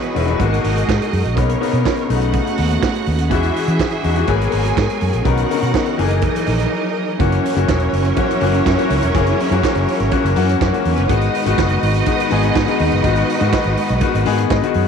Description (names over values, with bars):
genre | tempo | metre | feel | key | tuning
disco | 123 BPM | 4/4 | straight | unclear | A4 = 440 Hz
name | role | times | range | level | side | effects
clear symphonic string section | second line | 0.0-14.7 s | E3 to G#5 | -24 LUFS | right 12 dB | none
clear grand piano | accompaniment | 0.0-14.9 s | B2 to F#5 | -20 LUFS | left 12 dB | none
clear studio string section | sustained chords | 0.0-14.9 s | B2 to D#5 | -23 LUFS | right 1 dB | none
vintage drum kit | drums | 0.0-14.9 s | handclaps, hi-hat, kick drum, snare drum | -23 LUFS | right 4 dB | none
fingered electric bass | bass | 0.2-14.8 s | E1 to E3 | -18 LUFS | right 1 dB | none
room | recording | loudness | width
light reverb, small room ambience | 1960s-style stereo with parts hard left and right | -14 LUFS | side -6 dB against mid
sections
0.0-7.2 A section; 7.2-14.9 B section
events
break 6.7-7.2; grand piano fill 14.0-14.9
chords
0.4 G#m9; 1.4 Bmaj9; 2.1 B9; 3.3 Emaj9; 4.3 G#m9; 5.3 Bmaj9; 6.0 F#13; 7.2 F#7; 11.1 G#m7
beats
0.40 0.88 | 1.37 1.85 2.34 2.83 | 3.31 3.80 4.28 4.77 | 5.26 5.74 6.23 6.72 | 7.20 7.69 8.18 8.66 | 9.15 9.63 10.12 10.61 | 11.10 11.58 12.07 12.55 | 13.04 13.53 14.02 14.50